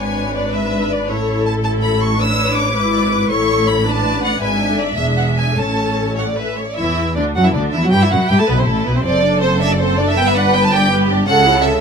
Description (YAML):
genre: quick classical-period movement for string orchestra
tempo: 107 BPM (dotted quarters)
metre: 6/8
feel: rubato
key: A major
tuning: A4 = 440 Hz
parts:
  - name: rich chamber violin section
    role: melody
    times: 0.0-11.8 s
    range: A4 to E6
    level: -19 LUFS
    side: right 1 dB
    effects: none
  - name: rich studio violin section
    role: second line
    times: 0.0-11.8 s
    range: D4 to F#5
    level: -22 LUFS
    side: equal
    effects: none
  - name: rich studio viola section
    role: accompaniment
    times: 0.0-11.8 s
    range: A3 to D5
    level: -20 LUFS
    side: left 2 dB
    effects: none
  - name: rich studio double bass section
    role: bass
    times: 0.0-11.8 s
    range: E1 to G2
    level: -20 LUFS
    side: equal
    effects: none
  - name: warm studio cello section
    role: bass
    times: 0.0-11.8 s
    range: E2 to A3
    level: -21 LUFS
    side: equal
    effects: none
room: light reverb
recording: none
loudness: -13 LUFS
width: side -6 dB against mid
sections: 0.0-6.8 A section; 6.8-11.8 B section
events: none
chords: 0.0 G#dim; 1.1 A; 2.2 Bm7/A; 2.7 E7/G#; 3.3 A; 3.9 Bm7/A; 4.4 E7/G#; 5.0 E7; 5.6 A; 6.8 Dadd9; 7.9 C; 9.1 D7/F#; 10.2 G; 11.3 A7/C#